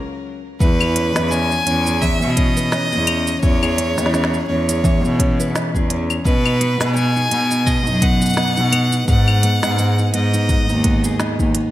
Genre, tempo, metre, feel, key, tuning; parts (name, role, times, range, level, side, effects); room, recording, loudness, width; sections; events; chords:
folktronica; 85 BPM; 4/4; swing 56% on 16ths; E major; A4 = 440 Hz
fingerpicked steel-string acoustic guitar; arpeggios; 0.0-11.7 s; G#2 to B4; -22 LUFS; equal; ping-pong delay
clear violin; melody; 0.6-11.2 s; B4 to G#5; -22 LUFS; equal; ping-pong delay
rich cello; bass; 0.6-11.5 s; D#2 to B2; -20 LUFS; equal; tube saturation
electronic kick drum; drums; 0.6-11.5 s; -19 LUFS; equal
organic electronic drum kit; drums; 0.6-11.7 s; claves, hi-hat, shaker, snare drum; -24 LUFS; equal
studio ambience; -15 LUFS; side -14 dB against mid
0.6-11.7 A section
stop 0.0-0.6
0.0 N.C.; 0.6 E6; 6.3 B6; 9.1 G#m7